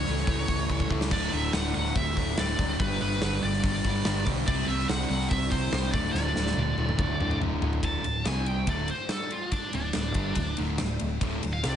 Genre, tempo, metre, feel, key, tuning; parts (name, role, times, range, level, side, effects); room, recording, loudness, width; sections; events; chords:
hard rock; 142 BPM; 4/4; straight; A4 = 440 Hz
high-gain lead guitar; melody; 0.0-11.8 s; D4 to A5; -32 LUFS; equal; distortion, analog delay
overdriven semi-hollow guitar; riff; 0.0-11.8 s; D2 to C4; -30 LUFS; equal
hollow-body short-scale fingered electric bass; bass; 0.0-11.8 s; D1 to C#2; -31 LUFS; equal
huge arena drum kit; drums; 0.1-11.7 s; crash cymbal, hi-hat, kick drum, ride cymbal, snare drum, splash cymbal, toms; -30 LUFS; equal
light reverb, small room ambience; nothing above 10.3 kHz; -25 LUFS; side -9 dB against mid
0.0-7.8 A section; 7.8-11.8 B section
drum fill 0.7-1.1, 6.2-7.8; lead electric guitar solo 7.8-11.8
0.0 A/C#; 1.1 D5; 2.8 G; 4.5 C5; 5.9 D5; 8.3 C5; 8.7 D5